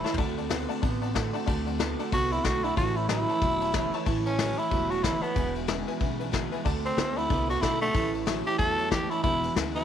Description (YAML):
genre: rockabilly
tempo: 185 BPM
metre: 4/4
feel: swing 61% on 8ths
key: A mixolydian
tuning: A4 = 439 Hz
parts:
  - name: raspy tenor saxophone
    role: melody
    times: 0.0-9.8 s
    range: A3 to A4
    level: -28 LUFS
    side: equal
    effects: none
  - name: picked steel-string acoustic guitar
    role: accompaniment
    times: 0.0-9.8 s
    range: E2 to F#4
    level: -37 LUFS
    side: left 12 dB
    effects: none
  - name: tack piano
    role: accompaniment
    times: 0.0-9.8 s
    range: B4 to A5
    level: -38 LUFS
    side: left 11 dB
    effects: none
  - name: electric guitar through a small old amp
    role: riff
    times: 0.0-9.8 s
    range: E2 to B3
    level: -32 LUFS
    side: right 12 dB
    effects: none
  - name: soft brush drum kit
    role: drums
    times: 0.1-9.8 s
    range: kick drum, ride cymbal, snare drum, toms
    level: -30 LUFS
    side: left 2 dB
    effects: none
  - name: upright bass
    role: bass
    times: 0.2-9.8 s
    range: E1 to E2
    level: -34 LUFS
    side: equal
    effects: none
room: light reverb, small room ambience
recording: 1960s-style stereo with parts hard left and right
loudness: -25 LUFS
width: side -9 dB against mid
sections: 0.0-9.8 A section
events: tenor saxophone solo 0.0-9.8; drum fill 0.0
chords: 0.2 D7; 2.8 A7; 5.4 E7; 6.7 D7; 7.9 A7; 9.2 E7